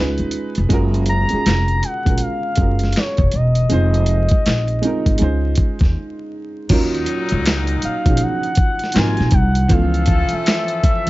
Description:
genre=R&B, neo-soul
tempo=80 BPM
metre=4/4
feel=swing 62% on 16ths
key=Eb dorian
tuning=A4 = 441 Hz
part: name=dark upright piano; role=accompaniment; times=0.0-11.1 s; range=E3 to C5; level=-23 LUFS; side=right 2 dB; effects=none
part: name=upright bass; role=bass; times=0.0-11.1 s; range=Fb1 to Eb2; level=-18 LUFS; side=equal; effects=none
part: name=dusty soul sampler-style drum kit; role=drums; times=0.2-11.1 s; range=crash cymbal, handclaps, hi-hat, kick drum, snare drum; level=-18 LUFS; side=equal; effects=overdrive
part: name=gliding portamento lead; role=melody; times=1.1-11.1 s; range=Db5 to Bb5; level=-23 LUFS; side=left 1 dB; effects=chorus
part: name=warm horn section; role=stabs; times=6.7-11.1 s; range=Bb2 to A4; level=-26 LUFS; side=left 4 dB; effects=none
room=little or no reverb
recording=vinyl crackle, nothing above 7.6 kHz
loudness=-15 LUFS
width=side -18 dB against mid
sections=0.0-6.7 A section; 6.7-11.1 B section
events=break 6.0-6.7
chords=0.0 Db9; 0.7 Gbmaj7; 3.7 Fm7; 5.2 Dbmaj9; 6.7 Ebm7; 8.9 Ab13; 9.7 Db7alt

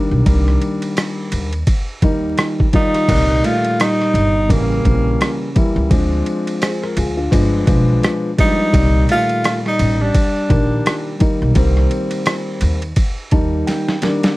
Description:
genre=hip hop, jazz-hop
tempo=85 BPM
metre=4/4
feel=swing 58% on 16ths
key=unclear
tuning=A4 = 440 Hz
part: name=dark baby grand piano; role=accompaniment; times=0.0-14.4 s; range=Bb2 to A5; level=-20 LUFS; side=left 1 dB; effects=none
part: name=upright bass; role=bass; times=0.1-13.6 s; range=G1 to Eb2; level=-17 LUFS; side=equal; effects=none
part: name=boom bap sampler-style drum kit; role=drums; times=0.3-14.4 s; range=crash cymbal, hi-hat, kick drum, ride cymbal, rim click, snare drum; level=-18 LUFS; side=equal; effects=overdrive
part: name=semi-hollow electric guitar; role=second line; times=2.7-11.2 s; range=C#3 to A3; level=-23 LUFS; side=right 1 dB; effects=none
part: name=breathy tenor saxophone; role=melody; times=2.8-11.2 s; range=Bb3 to F4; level=-18 LUFS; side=equal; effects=slapback echo
room=light reverb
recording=dark, warm production, vinyl crackle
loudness=-14 LUFS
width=side -19 dB against mid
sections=0.0-3.1 A section; 3.1-14.4 A section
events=grand piano fill 13.0-14.4; drum fill 13.7-14.4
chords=0.0 Cm9 (rootless); 3.1 Cm9; 4.5 A7b9; 5.9 Dm7b5; 7.3 G7b9; 8.7 Cm9

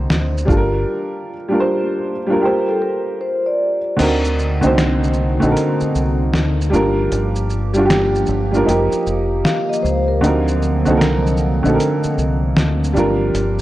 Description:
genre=lo-fi hip hop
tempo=77 BPM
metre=4/4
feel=swing 65% on 16ths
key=G minor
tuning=A4 = 440 Hz
part: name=dark upright piano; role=accompaniment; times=0.0-13.6 s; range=D3 to C5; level=-17 LUFS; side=right 1 dB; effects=none
part: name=deep dub fingered electric bass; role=bass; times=0.0-13.6 s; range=F1 to D2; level=-19 LUFS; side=equal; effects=none
part: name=dusty soul sampler-style drum kit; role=drums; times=0.1-13.6 s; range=crash cymbal, hi-hat, kick drum, shaker, snare drum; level=-21 LUFS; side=equal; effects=overdrive
part: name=vibraphone with soft mallets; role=second line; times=2.7-4.0, 9.4-10.5 s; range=A4 to F5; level=-22 LUFS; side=left 2 dB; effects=tape echo
part: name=warbly tape-like pad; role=sustained chords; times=4.0-13.6 s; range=F3 to G4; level=-24 LUFS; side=right 1 dB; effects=chorus, built-in reverb
room=moderate plate reverb, RT60 2.8 s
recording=worn, warbling old tape, cassette tape, warbly pitch drift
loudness=-15 LUFS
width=side -15 dB against mid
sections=0.0-4.0 A section; 4.0-13.6 A section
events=break 0.9-4.0; kick muted 4.0-13.6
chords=0.5 Gm7; 4.0 D7b9b13; 6.7 Gm7; 8.7 F9sus4; 10.2 D7b9b13; 13.0 Gm7

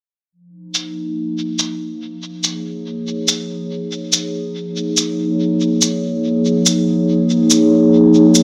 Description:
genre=ambient dub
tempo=71 BPM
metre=4/4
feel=swing 53% on 16ths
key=unclear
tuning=A4 = 440 Hz
part: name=warbly tape-like pad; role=sustained chords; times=0.8-8.4 s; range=F3 to Db5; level=-17 LUFS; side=equal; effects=chorus, built-in reverb
part: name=shaker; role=drums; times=0.7-8.4 s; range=none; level=-18 LUFS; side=equal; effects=low-pass filter on perc, low-pass filter on room, dub echo
room=wet concert hall reverb, RT60 2.1 s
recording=none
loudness=-17 LUFS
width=mono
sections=0.3-8.4 A section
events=fade-in on ambient pad 0.3-8.4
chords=0.3 Db

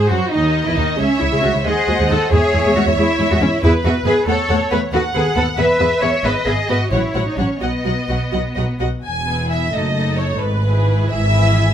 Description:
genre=quick classical-period movement for string orchestra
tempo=84-95 BPM (dotted quarters)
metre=6/8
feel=rubato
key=C# minor, E major from 3.6 s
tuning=A4 = 440 Hz
part: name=rich symphonic violin section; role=melody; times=0.0-11.7 s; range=G#4 to F#5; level=-24 LUFS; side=left 1 dB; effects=none
part: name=warm studio violin section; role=second line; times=0.0-11.7 s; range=D#4 to G#5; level=-22 LUFS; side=equal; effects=none
part: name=rich symphonic viola section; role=accompaniment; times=0.0-11.7 s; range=D#3 to A4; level=-22 LUFS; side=equal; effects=none
part: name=rich studio double bass section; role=bass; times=0.0-11.7 s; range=E1 to F#2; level=-19 LUFS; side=right 1 dB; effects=none
part: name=rich symphonic cello section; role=bass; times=0.0-11.7 s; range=E2 to C#5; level=-20 LUFS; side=equal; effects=none
room=light reverb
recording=close, detailed microphones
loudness=-15 LUFS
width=side -9 dB against mid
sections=0.0-9.0 A section; 9.0-11.7 B section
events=none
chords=0.0 G#7; 1.0 C#m; 1.7 G#7; 2.3 C#m/E; 3.6 E; 4.3 F#m7; 4.9 B7; 5.6 E; 6.9 F#m7; 7.6 B; 9.0 E; 9.7 D#dim/F#; 10.4 E/G#

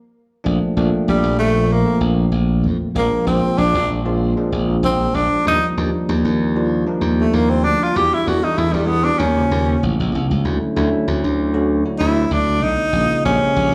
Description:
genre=jazz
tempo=96 BPM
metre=4/4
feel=straight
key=Bb major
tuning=A4 = 440 Hz
part: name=barky tine electric piano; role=accompaniment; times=0.4-13.7 s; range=Db3 to C#5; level=-24 LUFS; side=equal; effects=plate reverb, slapback echo
part: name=glassy slap bass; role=bass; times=0.5-13.7 s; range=A1 to F2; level=-21 LUFS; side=equal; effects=none
part: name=clear tenor saxophone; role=melody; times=1.1-13.7 s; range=G3 to G4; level=-20 LUFS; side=equal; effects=plate reverb, slapback echo
room=light reverb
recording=live gig heard through the venue's PA, club reverb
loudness=-18 LUFS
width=mono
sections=0.5-13.7 A section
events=stop 0.0-0.5; tenor saxophone solo 0.5-13.7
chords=0.5 Bbmaj7; 3.0 Bb9; 5.5 Ebmaj7; 8.0 Em9; 9.2 Eb13; 10.5 Dmaj9; 12.9 Bbm7

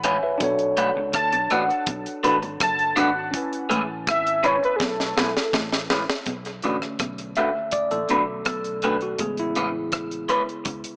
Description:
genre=lovers rock reggae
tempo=82 BPM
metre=4/4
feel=straight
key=unclear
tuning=A4 = 443 Hz
part: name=tine electric piano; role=accompaniment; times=0.0-11.0 s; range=C#3 to B5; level=-30 LUFS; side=equal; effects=phaser
part: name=electric guitar through a small old amp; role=stabs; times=0.0-10.4 s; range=G#3 to B4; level=-26 LUFS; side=equal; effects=phaser
part: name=vintage muted fingered electric bass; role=bass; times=0.0-10.8 s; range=F#1 to D2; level=-41 LUFS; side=equal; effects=none
part: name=deep reggae drum kit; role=drums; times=0.0-11.0 s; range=hi-hat, kick drum, rim click, snare drum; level=-29 LUFS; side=equal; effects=tape echo
part: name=electric guitar through a small old amp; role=riff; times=0.4-10.8 s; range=F#2 to D3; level=-35 LUFS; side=equal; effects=phaser
part: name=warm velvety synth lead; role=melody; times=1.1-5.5 s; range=G#4 to A5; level=-26 LUFS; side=equal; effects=chorus, tape echo
room=moderate spring reverb, RT60 2.6 s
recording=small speaker sound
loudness=-24 LUFS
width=mono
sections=0.0-6.3 A section; 6.3-11.0 B section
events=drum fill 4.8-6.3; tine electric piano solo 6.3-11.0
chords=0.4 Bm7; 3.3 Amaj9; 6.3 Bm7; 9.2 Amaj9

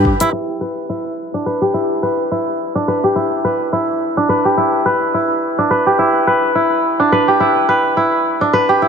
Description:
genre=downtempo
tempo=106 BPM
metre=4/4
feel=swing 56% on 16ths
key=E minor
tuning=A4 = 442 Hz
part: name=kora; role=arpeggios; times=0.0-8.9 s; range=D4 to B4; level=-14 LUFS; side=equal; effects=low-pass filter, tape echo
room=moderate lush hall reverb, RT60 2.5 s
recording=low-pass filter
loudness=-14 LUFS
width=side -6 dB against mid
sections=0.3-8.9 A section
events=filter sweep on kora 0.3-8.9; filter sweep 0.3-8.9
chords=0.3 Em7

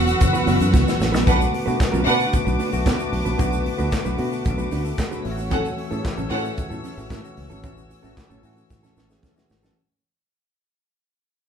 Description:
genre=disco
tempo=113 BPM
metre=4/4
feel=straight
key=B dorian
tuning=A4 = 441 Hz
part: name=warm symphonic violin section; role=second line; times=0.0-2.3, 5.5-6.5 s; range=C#4 to F#5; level=-23 LUFS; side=right 2 dB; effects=none
part: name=mellow electric guitar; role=accompaniment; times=0.0-9.7 s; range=F#3 to B4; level=-28 LUFS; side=right 5 dB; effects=none
part: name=tine electric piano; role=accompaniment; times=0.0-9.8 s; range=D3 to A4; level=-27 LUFS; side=left 3 dB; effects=medium stereo tremolo
part: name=dark studio string section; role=sustained chords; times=0.0-9.7 s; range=B4 to E6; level=-31 LUFS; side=left 3 dB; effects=none
part: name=fingered electric bass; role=bass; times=0.0-9.7 s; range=E1 to B2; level=-24 LUFS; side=equal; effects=none
part: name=modern studio drum kit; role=drums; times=0.1-9.8 s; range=handclaps, hi-hat, kick drum, snare drum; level=-24 LUFS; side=equal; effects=none
part: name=tube shaker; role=percussion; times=0.1-9.8 s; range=none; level=-42 LUFS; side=left 5 dB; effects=none
room=moderate large studio reverb, RT60 0.8 s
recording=band playing live in one room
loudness=-19 LUFS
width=side -8 dB against mid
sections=0.0-1.3 A section; 1.3-9.8 B section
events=drum fill 0.7-1.3, 8.7-9.8; fade-out 1.3-9.8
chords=0.0 F#7sus4; 1.3 Bm7; 5.2 A6

